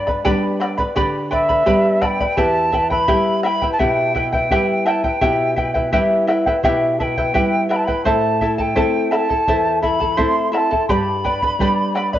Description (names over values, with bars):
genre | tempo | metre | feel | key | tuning
andean folk, Andean ensemble | 85 BPM | 4/4 | straight | E minor | A4 = 440 Hz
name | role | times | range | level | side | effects
quena | melody | 0.0-12.2 s | E5 to C6 | -20 LUFS | equal | cassette tape
charango | accompaniment | 0.0-12.2 s | E4 to B5 | -18 LUFS | left 1 dB | cassette tape
nylon-string guitar | accompaniment | 0.0-12.2 s | E2 to E4 | -24 LUFS | right 2 dB | cassette tape
bombo | percussion | 0.1-12.2 s | none | -25 LUFS | equal | none
room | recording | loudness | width
wet spring reverb, RT60 1.8 s, studio reverb | home recording on cassette, nothing above 7.4 kHz | -15 LUFS | side -12 dB against mid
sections
0.0-12.2 A section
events
none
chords
0.0 G; 2.4 Em; 8.1 Am; 10.9 G